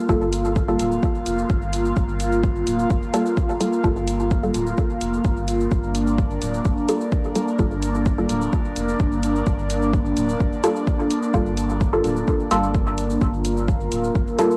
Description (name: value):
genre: dub techno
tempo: 128 BPM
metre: 4/4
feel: straight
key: G minor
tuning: A4 = 440 Hz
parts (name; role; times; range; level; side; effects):
- airy breathy pad; sustained chords; 0.0-14.6 s; Bb3 to F4; -26 LUFS; equal; chorus, phaser, vintage 12-bit sampler grit, sidechain pumping, cassette tape
- filtered dub chord stab; stabs; 0.0-14.6 s; G3 to A4; -26 LUFS; equal; chorus, phaser, sidechain pumping, cassette tape, dub echo
- soft dub sub bass; bass; 0.1-14.2 s; D1 to G1; -29 LUFS; equal; sidechain pumping
- electronic kick drum; drums; 0.1-14.3 s; none; -24 LUFS; equal; overdrive, cassette tape
- electronic shaker and hi-hat; drums; 0.1-14.6 s; none; -38 LUFS; equal; overdrive, cassette tape
- bubbling stepped-filter texture; texture; 13.2-14.6 s; Bb4; -30 LUFS; equal; chorus, built-in reverb, sidechain pumping, cassette tape
room: light reverb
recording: home recording on cassette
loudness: -21 LUFS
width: mono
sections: 0.0-14.6 A section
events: filter sweep on synth stab 0.0-14.6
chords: 0.0 Gm9